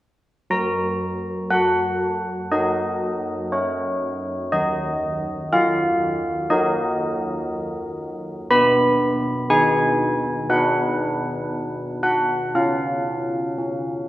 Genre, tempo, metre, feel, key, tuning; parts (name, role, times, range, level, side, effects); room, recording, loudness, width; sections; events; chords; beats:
classical, tune for church bells; 60 BPM; 4/4; straight; F# major; A4 = 440 Hz
old church bells; solo; 0.5-14.1 s; D#3 to B5; -19 LUFS; equal
wet recital hall reverb, RT60 1.6 s; -19 LUFS; side -15 dB against mid
0.5-14.1 A section
0.5 F#; 4.5 D#m; 8.5 B; 12.6 C#
| 0.50 1.51 2.52 3.54 | 4.54 5.53 6.52 7.51 | 8.51 9.51 10.51 11.54 | 12.57 13.59